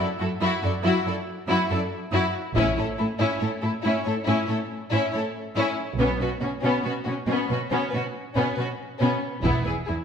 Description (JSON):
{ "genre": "cinematic, epic orchestral film score", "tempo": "70 BPM", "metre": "4/4", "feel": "straight", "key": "unclear", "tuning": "A4 = 440 Hz", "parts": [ { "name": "warm symphonic violin section", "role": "melody", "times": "0.0-9.9 s", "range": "C#4 to D5", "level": "-30 LUFS", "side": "left 5 dB", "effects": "none" }, { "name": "clear symphonic violin section", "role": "second line", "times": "0.0-10.0 s", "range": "B3 to A4", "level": "-28 LUFS", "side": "left 2 dB", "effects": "none" }, { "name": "rich symphonic viola section", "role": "accompaniment", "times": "0.0-10.0 s", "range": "C#4 to E4", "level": "-31 LUFS", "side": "right 2 dB", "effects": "none" }, { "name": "rich symphonic cello section", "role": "bass", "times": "0.0-10.0 s", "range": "E2 to B2", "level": "-28 LUFS", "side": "right 2 dB", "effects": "none" }, { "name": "warm symphonic double bass section", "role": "bass", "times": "2.6-9.6 s", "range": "E1 to B1", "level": "-30 LUFS", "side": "right 3 dB", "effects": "none" }, { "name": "taiko ensemble", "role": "drums", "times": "2.6-4.2, 9.4-10.0 s", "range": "none", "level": "-32 LUFS", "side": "right 1 dB", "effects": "none" } ], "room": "wet scoring stage reverb, RT60 1.6 s", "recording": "none", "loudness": "-23 LUFS", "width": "side -7 dB against mid", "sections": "0.0-10.0 A section", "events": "none", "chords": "0.0 Dadd9/F# (rootless); 2.6 A; 6.0 Bsus2; 9.4 E" }